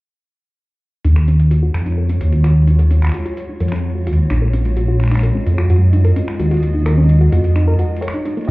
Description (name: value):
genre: IDM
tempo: 129 BPM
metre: 4/4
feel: straight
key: Eb minor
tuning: A4 = 435 Hz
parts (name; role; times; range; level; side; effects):
- granular cloud pad; sustained chords; 1.6-8.5 s; Ab3 to Eb5; -25 LUFS; equal; built-in reverb
- soft round pluck; arpeggios; 1.0-8.4 s; Bb3 to Bb4; -25 LUFS; left 1 dB; chorus, cassette tape, ping-pong delay
- dark detuned saw bass; bass; 1.0-7.8 s; Bb1 to Gb2; -12 LUFS; equal; none
- booming analog drum machine; drums; 1.0-8.5 s; finger snaps, hi-hat; -33 LUFS; equal; studio ambience, ping-pong delay
- felt-muted upright piano; melody; 8.0-8.5 s; Db5 to Eb5; -28 LUFS; equal; vintage 12-bit sampler grit
room: digital ambience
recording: heard muffled through a wall, club reverb, EQ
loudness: -13 LUFS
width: side -21 dB against mid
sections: 1.0-8.5 A section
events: filter sweep on detuned saw bass 1.0-8.5; filter sweep on synth arpeggio sound 1.0-8.5; break 8.0-8.5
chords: 1.0 Ebm11